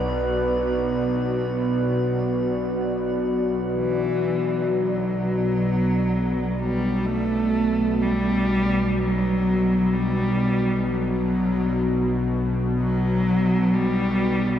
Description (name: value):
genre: dark ambient drone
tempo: free time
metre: none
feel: none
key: B minor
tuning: A4 = 442 Hz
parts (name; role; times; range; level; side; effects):
- deep dark ambient pad; sustained chords; 0.0-14.6 s; B3 to D5; -26 LUFS; left 1 dB; chorus, built-in reverb, shimmer reverb
- bowed-like drone; drone; 0.0-14.6 s; B1 to B2; -26 LUFS; equal; built-in reverb
- metallic inharmonic drone; texture; 0.0-5.2 s; B4; -31 LUFS; right 2 dB; chorus, built-in reverb, shimmer reverb
- dark cello; melody; 3.7-14.6 s; E3 to A3; -23 LUFS; equal; diffuse ambient delay
room: wet cathedral reverb, RT60 4.9 s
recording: in a vast, echoing space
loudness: -20 LUFS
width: side -10 dB against mid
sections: 0.0-5.2 A section; 5.2-14.6 B section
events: none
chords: 0.0 Bm